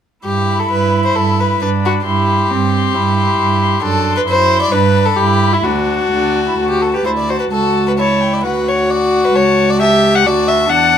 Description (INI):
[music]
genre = quick classical-period movement for string quartet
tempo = 133 BPM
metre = 4/4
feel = rubato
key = G major, D major from 7.5 s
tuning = A4 = 440 Hz
[part]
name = rich cello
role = bass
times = 0.2-11.0 s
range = C#2 to G2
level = -18 LUFS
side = right 4 dB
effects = none
[part]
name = warm violin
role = second line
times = 0.3-11.0 s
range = E4 to F#5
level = -16 LUFS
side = left 2 dB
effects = none
[part]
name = rich viola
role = accompaniment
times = 0.3-11.0 s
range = C4 to G4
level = -17 LUFS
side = equal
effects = none
[part]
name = dark violin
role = melody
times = 0.5-11.0 s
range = F#5 to C6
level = -22 LUFS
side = left 8 dB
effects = none
[sound]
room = light reverb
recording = minimal, uncompressed stereo recording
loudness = -12 LUFS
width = side -8 dB against mid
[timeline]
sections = 0.2-11.0 A section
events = none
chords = 0.2 G; 2.1 C/G; 3.8 D7/F#; 4.7 G; 5.6 D; 7.5 A/C#; 8.4 D; 9.3 A7/C#; 10.2 D